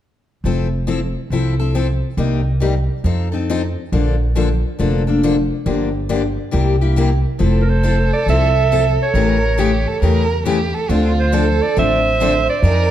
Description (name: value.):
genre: acoustic string swing (jazz manouche).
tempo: 138 BPM.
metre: 4/4.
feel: swing 64% on 8ths.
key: F major.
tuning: A4 = 440 Hz.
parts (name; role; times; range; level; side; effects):
upright bass; bass; 0.4-12.9 s; F1 to F2; -17 LUFS; equal; none.
picked steel-string acoustic guitar; accompaniment; 0.5-12.9 s; C3 to A4; -20 LUFS; left 4 dB; none.
warm violin; second line; 7.4-12.9 s; F4 to C5; -21 LUFS; right 3 dB; none.
bright clarinet; melody; 7.6-12.9 s; Bb4 to E5; -19 LUFS; right 4 dB; none.
room: moderate recital hall reverb, RT60 1.4 s.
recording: dark, warm production.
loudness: -14 LUFS.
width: side -11 dB against mid.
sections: 0.4-7.4 A section; 7.4-12.9 B section.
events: none.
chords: 0.4 Fmaj7; 2.2 Cm7; 3.0 F7; 3.9 Bbmaj7; 5.7 Gm7; 6.5 C7; 7.4 Fmaj7; 9.2 A7b9; 10.9 Dm7.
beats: | 0.43 0.87 1.31 1.74 | 2.18 2.61 3.05 3.49 | 3.92 4.36 4.79 5.23 | 5.67 6.10 6.54 6.97 | 7.41 7.84 8.28 8.72 | 9.15 9.59 10.02 10.46 | 10.89 11.33 11.77 12.20 | 12.64.